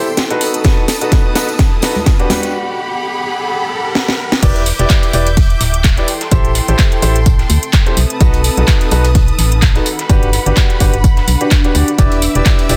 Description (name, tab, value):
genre	piano house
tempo	127 BPM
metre	4/4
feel	swing 56% on 16ths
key	E minor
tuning	A4 = 440 Hz
part	rich symphonic string section	sustained chords	0.0-12.8 s	G4 to G6	-25 LUFS	equal	sidechain pumping
part	clear upright piano	riff	0.0-12.8 s	D4 to D5	-22 LUFS	equal	sidechain pumping, low-pass filter, delay
part	riser	sound effects	1.7-4.4 s	none	-29 LUFS	equal	none
part	granular cloud pad	texture	0.0-12.8 s	B3 to B5	-27 LUFS	equal	built-in reverb, sidechain pumping
part	tambourine and congas	percussion	0.1-2.5 s	none	-26 LUFS	equal	none
part	house drum kit	drums	0.2-12.8 s	crash cymbal, handclaps, hi-hat, snare drum	-21 LUFS	equal	none
part	electronic kick drum	drums	0.6-12.6 s	none	-14 LUFS	equal	none
part	organ-like FM bass	bass	4.4-12.8 s	D1 to D2	-17 LUFS	equal	sidechain pumping
part	dusty soul sampler-style drum kit	drums	4.4-12.8 s	hi-hat, snare drum, tambourine	-29 LUFS	equal	sidechain pumping on perc, high-pass filter on perc, sidechain pumping on hats, high-pass filter on hats, high-pass filter on snare, high-pass filter on room
room	light reverb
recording	dense, heavily limited modern master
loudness	-13 LUFS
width	mono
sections	0.0-4.4 A section; 4.4-12.8 B section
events	build-up 0.0-4.4; drum fill 0.0-2.5, 4.0-4.4; filter sweep on upright piano 0.0-4.4; riser 1.7-4.4; break 2.5-4.4; drop 4.4-12.8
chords	0.4 B7; 2.3 Gmaj7; 4.4 Em7; 6.1 Am7; 8.0 B7; 9.9 Gmaj7; 12.0 Em7